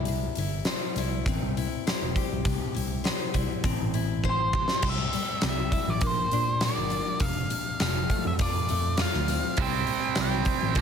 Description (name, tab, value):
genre	quiet-loud alternative rock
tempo	101 BPM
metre	4/4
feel	straight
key	unclear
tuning	A4 = 440 Hz
part	picked steel-string acoustic guitar	arpeggios	0.0-9.6 s	F2 to C5	-34 LUFS	left 12 dB	analog delay
part	tine electric piano	bass	0.0-10.8 s	E1 to Bb2	-30 LUFS	right 1 dB	medium stereo tremolo
part	huge arena drum kit	drums	0.1-10.8 s	crash cymbal, hi-hat, kick drum, snare drum	-28 LUFS	equal	none
part	octave-fuzz lead guitar	melody	4.3-10.8 s	C5 to G5	-30 LUFS	right 1 dB	distortion
part	overdriven electric guitar	riff	9.6-10.8 s	Bb2 to C4	-27 LUFS	right 15 dB	none
room	light reverb, studio reverb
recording	none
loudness	-24 LUFS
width	side -7 dB against mid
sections	0.0-4.8 A section; 4.8-10.8 B section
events	drum fill 4.2-4.8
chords	0.0 C; 6.0 Bb; 7.2 F; 9.6 C5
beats	| 0.06 0.66 1.25 1.85 | 2.45 3.05 3.65 4.24 | 4.84 5.43 6.03 6.62 | 7.21 7.81 8.40 8.99 | 9.58 10.18 10.77